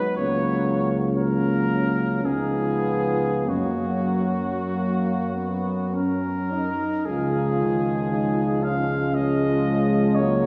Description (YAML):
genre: classical, hymn-like piece for brass band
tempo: 47-61 BPM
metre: 3/4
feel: rubato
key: F# major, Db major from 7.1 s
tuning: A4 = 440 Hz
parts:
  - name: warm cornet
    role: melody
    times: 0.0-10.5 s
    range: F#4 to F5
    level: -31 LUFS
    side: equal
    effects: none
  - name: bright trombone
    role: accompaniment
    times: 0.0-10.5 s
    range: Db3 to F#3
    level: -32 LUFS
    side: equal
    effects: none
  - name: bright trombone section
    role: accompaniment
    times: 0.0-10.5 s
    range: F3 to D#4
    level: -30 LUFS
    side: equal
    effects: none
  - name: clear tuba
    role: bass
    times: 0.0-10.5 s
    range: G#1 to F#2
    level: -28 LUFS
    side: equal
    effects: none
  - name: mellow French horn section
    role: second line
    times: 0.2-10.5 s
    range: C#4 to F4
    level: -32 LUFS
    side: equal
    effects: none
room: wet concert hall reverb, RT60 2.5 s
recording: heard from further back in the room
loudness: -23 LUFS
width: mono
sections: 0.0-7.1 A section; 7.1-10.5 B section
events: none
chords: 0.2 F#/C#; 2.2 C#9; 3.5 F#; 7.1 Db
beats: | 0.17 1.17 2.25 | 3.47 4.73 5.93 | 7.07 8.12 9.16 | 10.19